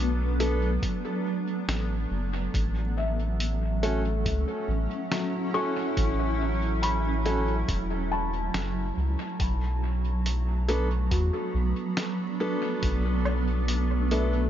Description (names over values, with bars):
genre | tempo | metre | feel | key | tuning
ambient dub | 70 BPM | 4/4 | straight | B minor | A4 = 435 Hz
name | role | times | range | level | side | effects
granular cloud pad | sustained chords | 0.0-14.5 s | F#3 to A4 | -31 LUFS | right 2 dB | built-in reverb
felt-muted upright piano | arpeggios | 0.0-14.5 s | F#3 to C#6 | -34 LUFS | left 3 dB | vintage 12-bit sampler grit, dub echo
clear upright piano | stabs | 0.0-14.4 s | B3 to A4 | -33 LUFS | right 1 dB | dub echo
soft dub sub bass | bass | 0.0-14.5 s | E1 to E2 | -27 LUFS | equal | none
lo-fi sampler-style drum kit | drums | 0.4-14.3 s | hi-hat, snare drum, woodblock | -35 LUFS | equal | studio reverb, dub echo
electronic kick drum | drums | 0.8-13.0 s | none | -30 LUFS | equal | studio reverb
room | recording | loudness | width
digital ambience | nothing above 7.5 kHz | -25 LUFS | side -10 dB against mid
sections
0.0-14.5 A section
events
none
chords
0.0 Bm7; 2.5 A6; 9.4 Bm7